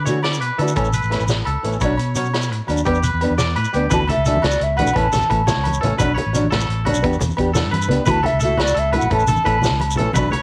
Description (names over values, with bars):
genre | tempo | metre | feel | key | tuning
highlife guitar band | 115 BPM (dotted quarters) | 12/8 | straight | D major | A4 = 440 Hz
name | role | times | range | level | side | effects
fingerpicked acoustic archtop guitar | accompaniment | 0.0-10.3 s | E3 to A4 | -24 LUFS | equal | cassette tape
twangy electric guitar | arpeggios | 0.0-10.4 s | F#4 to D5 | -28 LUFS | equal | cassette tape, analog delay
fingered electric bass | bass | 0.0-10.3 s | A1 to D3 | -24 LUFS | equal | none
vintage drum kit | drums | 0.1-10.4 s | hi-hat, kick drum, snare drum | -28 LUFS | equal | cassette tape
shekere | percussion | 0.1-10.2 s | none | -26 LUFS | equal | none
agogo bells | percussion | 0.2-10.4 s | none | -32 LUFS | equal | none
hollow wooden flute | melody | 3.9-10.0 s | D5 to B5 | -22 LUFS | equal | cassette tape
congas | percussion | 3.9-10.4 s | none | -27 LUFS | equal | none
room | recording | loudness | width
light reverb | home recording on cassette | -19 LUFS | mono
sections
0.0-3.9 A section; 3.9-10.4 B section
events
none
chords
0.0 Dadd9; 0.8 A; 1.8 Bmadd9; 2.9 Em7; 3.9 Dadd9; 5.0 A; 6.0 Bmadd9; 7.0 Em7; 8.1 Dadd9; 9.1 A